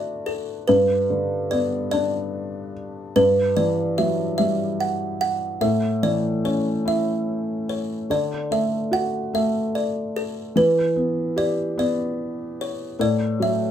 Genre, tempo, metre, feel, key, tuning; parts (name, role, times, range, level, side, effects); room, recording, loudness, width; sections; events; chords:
children's music, lullaby; 49 BPM (dotted quarters); 6/8; rubato; D major; A4 = 442 Hz
buzzing kalimba; melody; 0.0-13.7 s; A4 to F#5; -23 LUFS; right 1 dB
felt-muted upright piano; accompaniment; 0.0-13.7 s; G2 to G4; -24 LUFS; left 2 dB
moderate studio reverb, RT60 0.5 s; -20 LUFS; side -10 dB against mid
0.0-13.7 A section
0.0 D; 0.7 G; 3.2 Emadd9/G; 5.6 A; 8.1 D; 10.6 Em7; 13.0 Dadd9/A